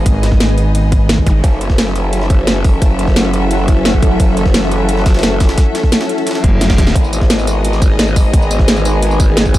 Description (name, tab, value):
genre	dark technical drum and bass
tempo	174 BPM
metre	4/4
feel	straight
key	unclear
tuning	A4 = 440 Hz
part	rich studio string section	sustained chords	0.0-9.6 s	D#3 to E5	-20 LUFS	equal	sidechain pumping
part	growl bass	bass	0.0-9.6 s	F#1 to G#1	-16 LUFS	equal	chorus, sidechain pumping
part	granular cloud pad	texture	0.0-9.6 s	D#4 to G#5	-22 LUFS	left 1 dB	built-in reverb, sidechain pumping
part	growling FM bass	bass	0.1-1.4, 6.4-6.9 s	F#1 to G#1	-13 LUFS	equal	none
part	drum and bass drum kit	drums	0.1-9.6 s	hi-hat, snare drum, tambourine	-17 LUFS	equal	none
part	electronic kick drum	drums	0.1-9.6 s	none	-11 LUFS	equal	overdrive
part	jungle sampler-style drum kit	drums	0.1-9.6 s	hi-hat, ride cymbal, snare drum	-28 LUFS	equal	high-pass filter on cymbals, high-pass filter on snare, high-pass filter on hats
part	zap and reverse cymbal	sound effects	1.3-1.4, 6.4-7.0 s	none	-29 LUFS	right 1 dB	none
room	light reverb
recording	dark, warm production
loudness	-10 LUFS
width	side -15 dB against mid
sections	0.0-9.6 A section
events	reverse cymbal 6.4-7.0; drum fill 6.6-7.0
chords	0.0 G#m; 1.4 F#m7; 7.0 G#m